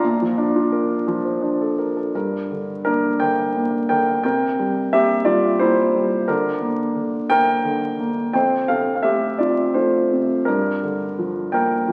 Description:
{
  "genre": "classical, lyrical solo piano",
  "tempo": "86 BPM",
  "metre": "3/4",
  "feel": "rubato",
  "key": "G dorian",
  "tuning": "A4 = 441 Hz",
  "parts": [
    { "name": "warm grand piano", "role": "solo", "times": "0.0-11.9 s", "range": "F2 to Bb5", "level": "-20 LUFS", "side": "equal", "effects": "none" }
  ],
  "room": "wet concert hall reverb, RT60 2.1 s",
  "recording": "very old 78 rpm record, vinyl crackle",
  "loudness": "-20 LUFS",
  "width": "mono",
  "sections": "0.0-2.1 A section; 2.1-11.9 B section",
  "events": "none",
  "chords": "0.0 Bbmaj9; 2.1 Gm; 4.2 C7; 6.3 Bb/D; 8.3 Fadd9; 10.5 Gm7"
}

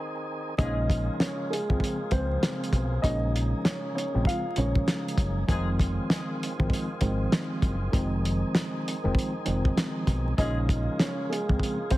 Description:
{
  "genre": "hip hop, boom-bap hip-hop",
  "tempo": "98 BPM",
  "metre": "4/4",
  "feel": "swing 62% on 16ths",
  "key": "Bb minor",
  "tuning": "A4 = 440 Hz",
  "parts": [
    { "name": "tonewheel organ", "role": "sustained chords", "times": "0.0-12.0 s", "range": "Db3 to Ab4", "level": "-38 LUFS", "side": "equal", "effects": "overdrive, fast rotary speaker, high-pass filter, low-pass filter" },
    { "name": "dark upright piano", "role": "melody", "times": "0.6-5.0, 10.4-12.0 s", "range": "Ab3 to F5", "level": "-32 LUFS", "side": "equal", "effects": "high-pass filter, low-pass filter, tape echo" },
    { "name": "mellow tine electric piano", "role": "accompaniment", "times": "0.6-12.0 s", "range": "Db3 to Db4", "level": "-32 LUFS", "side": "equal", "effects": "medium stereo tremolo, cassette tape, high-pass filter, low-pass filter" },
    { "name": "warm horn section", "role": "stabs", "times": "0.6-0.8, 5.5-5.7, 10.4-10.6 s", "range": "Ab3 to Ab4", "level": "-42 LUFS", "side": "left 3 dB", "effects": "high-pass filter, low-pass filter, tape echo" },
    { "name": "deep dub fingered electric bass", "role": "bass", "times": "0.6-12.0 s", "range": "F1 to Db2", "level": "-28 LUFS", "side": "equal", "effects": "none" },
    { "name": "cloth-damped thuddy drum kit", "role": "drums", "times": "0.6-12.0 s", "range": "hi-hat, kick drum, snare drum", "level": "-27 LUFS", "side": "equal", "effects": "none" }
  ],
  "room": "light reverb, studio ambience",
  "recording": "heavily compressed radio sound, multiband compression, vinyl crackle",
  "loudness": "-25 LUFS",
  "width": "side -17 dB against mid",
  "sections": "0.6-12.0 A section",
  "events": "break 0.0-0.6",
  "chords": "0.0 Fm7 (rootless); 0.6 Bbm7; 5.5 Fm7; 10.4 Bbm7"
}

